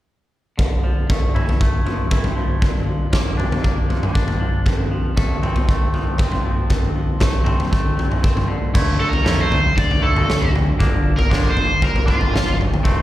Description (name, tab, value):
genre	quiet-loud alternative rock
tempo	118 BPM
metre	4/4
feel	straight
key	D minor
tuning	A4 = 439 Hz
part	twangy electric guitar	arpeggios	0.6-13.0 s	F2 to E4	-26 LUFS	equal	slapback echo, tape echo
part	huge arena drum kit	drums	0.6-13.0 s	crash cymbal, kick drum, snare drum, toms	-17 LUFS	equal	none
part	growling fingered electric bass	bass	8.8-13.0 s	F1 to F2	-21 LUFS	equal	overdrive
part	high-gain lead guitar	melody	9.0-12.5 s	F4 to D5	-21 LUFS	right 1 dB	distortion, slapback echo, tape echo
room	little or no reverb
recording	live gig heard through the venue's PA, recital hall reverb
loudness	-16 LUFS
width	side -14 dB against mid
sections	0.6-8.7 A section; 8.7-13.0 B section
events	none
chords	0.6 Dmadd9; 2.6 Gm7; 4.7 F; 8.5 N.C.; 8.7 Dmadd9; 10.8 Gm7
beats	| 0.59 1.10 1.61 2.12 | 2.63 3.14 3.65 4.16 | 4.67 5.18 5.69 6.20 | 6.71 7.22 7.73 8.24 | 8.75 9.26 9.77 10.28 | 10.79 11.30 11.81 12.32 | 12.83